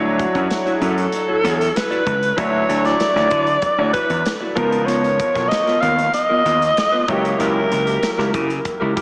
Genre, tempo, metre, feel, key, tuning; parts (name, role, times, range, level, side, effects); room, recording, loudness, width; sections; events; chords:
polished 1980s jazz-funk pop; 96 BPM; 4/4; straight; A4 = 440 Hz
clear grand piano; accompaniment; 0.0-9.0 s; E#3 to E5; -24 LUFS; equal; analog chorus
mellow electric guitar; riff; 0.0-9.0 s; B3 to D5; -25 LUFS; equal; analog chorus
gritty slap bass; bass; 0.0-8.9 s; B1 to D3; -22 LUFS; equal; overdrive
raspy alto saxophone; melody; 0.2-8.7 s; F#4 to E#5; -18 LUFS; equal
modern studio drum kit; drums; 0.2-9.0 s; hi-hat, kick drum, snare drum; -27 LUFS; equal
wet lush hall reverb, RT60 2.5 s; dreamy mix soaked in reverb, small speaker sound; -15 LUFS; side -38 dB against mid
0.0-9.0 A section
0.0 Dmaj9; 4.6 C#13; 7.1 F#7b9/C#